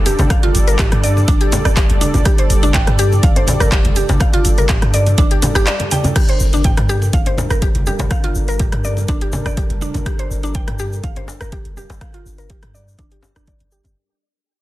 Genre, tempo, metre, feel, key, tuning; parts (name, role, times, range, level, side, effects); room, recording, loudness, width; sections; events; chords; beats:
afro house; 123 BPM; 4/4; straight; G minor; A4 = 441 Hz
warm analog pad; sustained chords; 0.0-13.9 s; G3 to D5; -25 LUFS; equal; chorus, sidechain pumping
warm 808-style bass; bass; 0.0-13.9 s; F1 to G2; -18 LUFS; equal; sidechain pumping
mallet-like synth pluck; arpeggios; 0.1-13.8 s; D4 to G5; -22 LUFS; equal; chorus, sidechain pumping, dub echo
afro-pop drum kit; drums; 0.1-13.9 s; crash cymbal, handclaps, hi-hat, rim click; -23 LUFS; equal; soft clipping on snare
djembe; percussion; 0.1-13.9 s; -26 LUFS; left 2 dB
tube shaker; percussion; 0.1-13.9 s; -30 LUFS; left 2 dB
congas; percussion; 0.2-10.0 s; -24 LUFS; right 1 dB
electronic kick drum; drums; 0.3-13.6 s; -17 LUFS; equal; overdrive
digital ambience; dense, heavily limited modern master, lossy compression artefacts; -13 LUFS; side -16 dB against mid
0.0-6.2 A section; 6.2-14.0 B section
drop 0.0-6.2; break 5.7-6.2; fade-out 6.2-14.0; filter sweep on 808-style bass 6.2-14.0; filter sweep on synth pluck 6.2-14.0
0.0 G7sus2; 6.2 Gm9
| 0.30 0.79 1.28 1.77 | 2.26 2.74 3.23 3.72 | 4.21 4.70 5.18 5.67 | 6.16 6.65 7.13 7.62 | 8.11 8.60 9.09 9.57 | 10.06 10.55 11.04 11.52 | 12.01 12.50 12.99 13.48